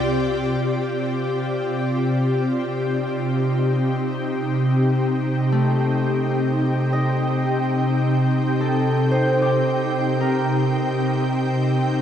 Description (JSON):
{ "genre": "ambient", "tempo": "55 BPM", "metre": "4/4", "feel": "straight", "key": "C dorian", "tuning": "A4 = 440 Hz", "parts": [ { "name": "ethereal airy pad", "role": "sustained chords", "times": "0.0-12.0 s", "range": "C3 to G5", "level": "-19 LUFS", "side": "equal", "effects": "ensemble chorus, built-in reverb, shimmer reverb" }, { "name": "concert harp", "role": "arpeggios", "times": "0.0-12.0 s", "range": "A3 to Eb5", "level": "-26 LUFS", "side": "equal", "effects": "diffuse ambient delay, shimmer reverb" }, { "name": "round analog bass", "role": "bass", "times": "0.0-0.6 s", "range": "C2", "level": "-38 LUFS", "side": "equal", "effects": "none" }, { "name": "bowed-like drone", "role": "drone", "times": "8.2-12.0 s", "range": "none", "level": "barely audible", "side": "none", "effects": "none" } ], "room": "wet lush hall reverb, RT60 2.8 s", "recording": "none", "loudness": "-19 LUFS", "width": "side -9 dB against mid", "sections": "0.6-12.0 A section", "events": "none", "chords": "0.0 Cm7", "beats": "| 0.63 1.74 2.85 3.96 | 5.05 6.14 7.23 8.32 | 9.41 10.51 11.61" }